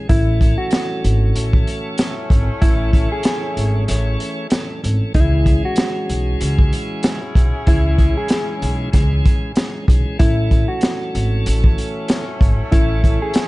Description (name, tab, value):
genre	hip hop, boom-bap hip-hop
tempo	95 BPM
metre	4/4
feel	swing 57% on 16ths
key	unclear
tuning	A4 = 441 Hz
part	tonewheel organ	accompaniment	0.0-13.5 s	E3 to C#5	-27 LUFS	right 1 dB	slow rotary speaker, high-pass filter, low-pass filter
part	mellow electric guitar	melody	0.1-13.5 s	E4 to G#4	-25 LUFS	left 1 dB	high-pass filter, low-pass filter, analog delay
part	upright bass	bass	0.1-13.1 s	G#1 to C#2	-18 LUFS	equal	none
part	crunchy breakbeat drum kit	drums	0.1-13.5 s	hi-hat, kick drum, snare drum	-16 LUFS	equal	none
part	bright saxophone section	stabs	1.4-13.5 s	A3 to G#4	-30 LUFS	left 1 dB	high-pass filter, low-pass filter, analog delay
room	studio ambience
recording	dark, warm production, nothing above 10.4 kHz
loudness	-15 LUFS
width	side -20 dB against mid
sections	0.0-13.5 A section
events	break 3.9-5.1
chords	0.1 A; 5.1 C#m; 10.2 A